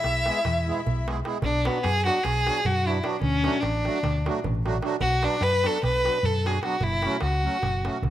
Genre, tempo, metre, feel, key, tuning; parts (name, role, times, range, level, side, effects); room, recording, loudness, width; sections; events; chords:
balkan folk, Balkan wedding band; 301 BPM (eighths); 9/8; straight; A4 = 443 Hz
warm violin; melody; 0.0-8.0 s; B3 to E5; -25 LUFS; equal
accordion; second line; 0.0-1.1 s; E4; -34 LUFS; left 5 dB
hollow-body short-scale fingered electric bass; bass; 0.0-8.1 s; F#1 to F#2; -27 LUFS; left 1 dB
darbuka; percussion; 0.0-8.1 s; -32 LUFS; right 3 dB
accordion; accompaniment; 0.3-8.0 s; F#3 to G#4; -32 LUFS; right 4 dB; light tremolo tuning
light reverb; close, detailed microphones; -22 LUFS; side -12 dB against mid
0.0-1.4 A section; 1.4-8.1 A section
0.0 E; 1.4 Bm; 3.2 D; 5.0 Bm; 6.8 F#m